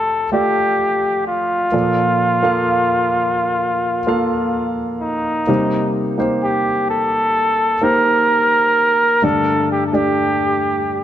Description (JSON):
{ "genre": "pop ballad", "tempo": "64 BPM", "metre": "4/4", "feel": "straight", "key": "Bb major", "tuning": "A4 = 443 Hz", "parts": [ { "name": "clear flugelhorn", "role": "melody", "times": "0.0-11.0 s", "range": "Eb4 to Bb4", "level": "-16 LUFS", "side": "equal", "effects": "none" }, { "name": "warm grand piano", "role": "accompaniment", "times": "0.0-11.0 s", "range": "F2 to F5", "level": "-19 LUFS", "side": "equal", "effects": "none" } ], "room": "moderate lush hall reverb, RT60 2.5 s", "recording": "none", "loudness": "-15 LUFS", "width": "side -11 dB against mid", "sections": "0.0-11.0 A section", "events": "none", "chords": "0.0 Fadd9; 1.7 Bbmaj7; 5.5 Cm7; 9.2 Gsus2" }